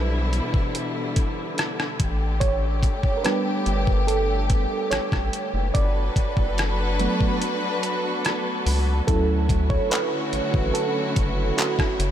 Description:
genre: contemporary R&B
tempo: 72 BPM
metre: 4/4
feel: straight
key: D major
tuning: A4 = 440 Hz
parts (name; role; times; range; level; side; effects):
- mellow FM electric piano; accompaniment; 0.0-12.1 s; B2 to D5; -27 LUFS; right 4 dB; chorus
- warm studio string section; sustained chords; 0.0-12.1 s; B2 to B4; -27 LUFS; left 2 dB; none
- rubbery square bass; bass; 0.0-12.1 s; F#1 to D2; -24 LUFS; equal; none
- detuned 8-bit digital drum machine; drums; 0.3-12.1 s; handclaps, hi-hat, kick drum, rim click; -25 LUFS; equal; none
room: light reverb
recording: none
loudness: -20 LUFS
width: side -10 dB against mid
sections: 0.0-9.1 A section; 9.1-12.1 B section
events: FM electric piano solo 0.0-9.1, 9.1-12.1; kick muted 7.4-9.1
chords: 0.0 Cmaj7; 2.0 A7sus4; 5.7 Gmaj7 (rootless); 9.1 Dmaj7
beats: 0.75 1.58 | 2.41 3.25 4.08 4.91 | 5.75 6.58 7.41 8.25 | 9.08 9.91 10.75 11.58

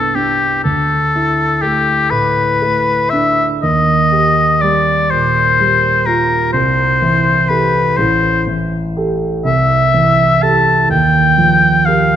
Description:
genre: classical, impressionist duo for oboe and grand piano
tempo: 41 BPM (dotted quarters)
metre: 6/8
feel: rubato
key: unclear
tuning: A4 = 440 Hz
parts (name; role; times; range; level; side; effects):
- clear oboe; melody; 0.0-12.2 s; G4 to A5; -12 LUFS; left 2 dB; none
- warm concert grand piano; accompaniment; 0.0-12.2 s; A1 to Bb4; -15 LUFS; right 3 dB; none
room: moderate concert hall reverb, RT60 1.8 s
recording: none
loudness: -11 LUFS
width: side -10 dB against mid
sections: 0.0-12.2 A section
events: none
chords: 0.0 Cmaj9; 0.6 Dsus2; 3.6 Ebadd9; 6.5 C6; 8.0 A5; 9.4 C6; 10.9 Ebadd9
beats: | 0.64 2.11 | 3.62 5.11 | 6.54 7.97 | 9.45 10.91

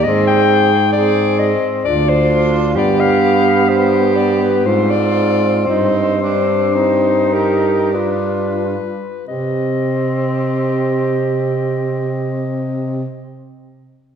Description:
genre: classical, lyrical piece for single-reed quartet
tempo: 43-69 BPM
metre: 3/4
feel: rubato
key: C minor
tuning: A4 = 441 Hz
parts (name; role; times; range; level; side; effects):
- warm clarinet; melody; 0.0-13.1 s; Bb4 to G5; -19 LUFS; left 7 dB; none
- clear alto saxophone; second line; 0.0-13.0 s; C4 to Ab4; -19 LUFS; right 5 dB; none
- mellow tenor saxophone; accompaniment; 0.0-13.0 s; B3 to Eb4; -21 LUFS; left 3 dB; none
- dark baritone saxophone; bass; 0.0-13.1 s; D2 to C3; -18 LUFS; right 2 dB; none
room: wet concert hall reverb, RT60 1.8 s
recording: none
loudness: -13 LUFS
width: side -7 dB against mid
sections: 0.0-9.3 A section; 9.3-13.2 B section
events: slowing down 1.4-9.3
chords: 0.1 Ab; 1.9 Dm7; 2.8 G; 4.7 Ab; 5.7 Cm/G; 7.9 G7; 9.3 Cm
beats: | 0.06 0.95 1.85 | 2.76 3.69 4.66 | 5.68 6.75 7.93 | 9.28 10.59 11.90

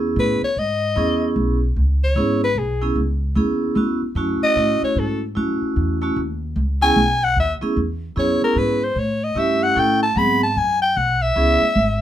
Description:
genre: jazz, small-group swing and bop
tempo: 150 BPM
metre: 3/4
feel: swing 64% on 8ths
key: C# minor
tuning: A4 = 438 Hz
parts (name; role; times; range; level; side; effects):
- vibraphone with medium hard mallets; accompaniment; 0.0-11.6 s; F#3 to A4; -21 LUFS; right 2 dB; none
- upright bass; bass; 0.0-12.0 s; G#1 to A2; -22 LUFS; equal; none
- growling soprano saxophone; melody; 0.2-12.0 s; G#4 to B5; -19 LUFS; left 2 dB; none
room: moderate club reverb, RT60 0.6 s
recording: minimal, uncompressed stereo recording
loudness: -17 LUFS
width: side -11 dB against mid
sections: 0.0-12.0 A section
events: none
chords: 0.0 C#m7; 4.2 F#m7; 6.6 C#m7; 9.0 A7; 10.2 G#7#9; 11.4 C#m7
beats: 0.17 | 0.57 0.97 1.37 | 1.77 2.17 2.57 | 2.97 3.37 3.77 | 4.17 4.57 4.97 | 5.37 5.77 6.17 | 6.57 6.97 7.37 | 7.76 8.16 8.56 | 8.96 9.36 9.76 | 10.16 10.56 10.96 | 11.36 11.76

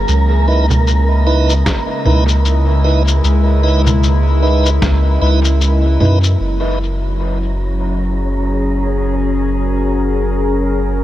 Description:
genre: ambient dub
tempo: 76 BPM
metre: 4/4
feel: swing 58% on 16ths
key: unclear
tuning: A4 = 440 Hz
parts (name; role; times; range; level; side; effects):
- warbly tape-like pad; sustained chords; 0.0-11.0 s; C#3 to A#4; -20 LUFS; left 1 dB; chorus, built-in reverb, phaser
- soft dub sub bass; bass; 0.0-11.0 s; F#1 to F#2; -14 LUFS; equal; none
- wind-like tuned noise texture; texture; 0.0-11.0 s; A#3 to A#5; -25 LUFS; right 1 dB; built-in reverb
- electronic shaker, congas and snare drum; drums; 0.1-6.4 s; none; -22 LUFS; equal; dub echo
- tonewheel organ; stabs; 0.5-6.2 s; D#4 to B4; -21 LUFS; right 2 dB; overdrive, slow rotary speaker, dub echo
- electronic kick drum; drums; 1.7-5.0 s; none; -19 LUFS; equal; none
room: little or no reverb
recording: none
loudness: -12 LUFS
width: side -14 dB against mid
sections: 0.0-6.4 A section; 6.4-11.0 B section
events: none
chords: 0.1 C#m7; 6.4 F#7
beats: | 0.08 0.87 1.66 2.45 | 3.24 4.03 4.82 5.61 | 6.40 7.19 7.98 8.77 | 9.56 10.35

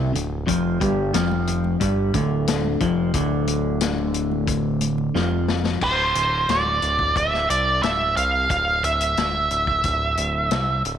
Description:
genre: psychedelic rock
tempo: 90 BPM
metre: 4/4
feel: straight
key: D minor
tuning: A4 = 439 Hz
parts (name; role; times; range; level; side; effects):
- twelve-string electric guitar; riff; 0.0-5.8 s; D2 to C3; -22 LUFS; left 1 dB; phaser
- fat analog bass; bass; 0.0-11.0 s; D1 to C2; -26 LUFS; equal; none
- vintage drum kit; drums; 0.2-11.0 s; crash cymbal, hi-hat, kick drum, snare drum; -27 LUFS; left 5 dB; none
- congas; percussion; 0.2-5.8 s; none; -36 LUFS; right 9 dB; none
- octave-fuzz lead guitar; melody; 5.8-10.8 s; C5 to F5; -20 LUFS; right 2 dB; distortion, slapback echo
room: moderate echo chamber reverb, RT60 1.9 s, small room ambience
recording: 1960s-style stereo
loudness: -19 LUFS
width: side -9 dB against mid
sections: 0.0-5.8 A section; 5.8-11.0 B section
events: drum fill 5.1-5.8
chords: 0.5 Fsus2; 5.8 D7sus2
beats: | 0.48 1.14 1.81 2.47 | 3.14 3.81 4.47 5.14 | 5.81 6.48 7.15 7.83 | 8.50 9.17 9.84 10.52

